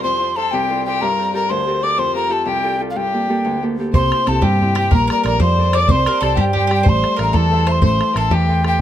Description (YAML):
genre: celtic folk, Celtic jig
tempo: 123 BPM (dotted quarters)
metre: 6/8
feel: straight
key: unclear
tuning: A4 = 441 Hz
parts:
  - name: mellow hollow wooden whistle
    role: melody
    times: 0.0-8.8 s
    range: F5 to D6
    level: -19 LUFS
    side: equal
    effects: none
  - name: rich fiddle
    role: second line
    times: 0.0-8.8 s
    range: G4 to D5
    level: -24 LUFS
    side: left 6 dB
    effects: none
  - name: Celtic harp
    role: accompaniment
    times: 0.0-8.8 s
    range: C2 to E5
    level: -21 LUFS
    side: equal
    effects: none
  - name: bowl-back mandolin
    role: second line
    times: 3.9-8.8 s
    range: G4 to D5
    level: -26 LUFS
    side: right 3 dB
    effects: none
  - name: hollow-body short-scale picked electric bass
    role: bass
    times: 3.9-8.8 s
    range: A1 to G2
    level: -18 LUFS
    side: right 1 dB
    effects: none
  - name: bodhran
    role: percussion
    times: 3.9-8.7 s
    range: none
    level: -18 LUFS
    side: equal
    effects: none
room: light reverb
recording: close, detailed microphones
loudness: -14 LUFS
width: side -11 dB against mid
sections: 0.0-3.9 A section; 3.9-8.8 A section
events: none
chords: 0.0 F; 1.0 Gmadd9; 2.0 Fadd9; 3.0 Gmadd9; 3.9 C; 4.9 Bbmaj7; 5.9 Csus2; 6.9 Am